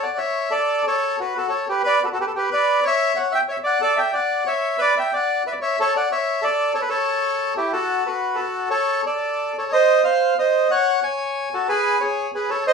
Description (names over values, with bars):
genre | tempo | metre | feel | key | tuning
musette | 183 BPM | 3/4 | swing 53% on 8ths | D major | A4 = 439 Hz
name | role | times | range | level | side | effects
bandoneon | solo | 0.0-12.7 s | E4 to G#5 | -18 LUFS | equal | none
room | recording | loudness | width
wet studio ambience, RT60 0.5 s | band playing live in one room, small room ambience | -18 LUFS | side -5 dB against mid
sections
0.0-7.7 A section; 7.7-12.7 B section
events
none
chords
0.0 D5; 0.8 F#madd11; 1.8 Gmaj7; 2.8 C#madd11; 3.8 Dmaj7; 4.8 Bmadd11; 5.8 A; 6.7 A9; 7.7 N.C.; 10.7 C#sus4; 11.7 C#5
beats
0.19 0.52 | 0.85 1.18 1.50 | 1.83 2.15 2.48 | 2.81 3.14 3.46 | 3.80 4.13 4.46 | 4.79 5.11 5.44 | 5.76 6.09 6.42 | 6.74 7.07 7.40 | 7.74 8.06 8.39 | 8.72 9.05 9.37 | 9.70 10.03 10.35 | 10.68 11.01 11.34 | 11.67 12.00 12.32 | 12.65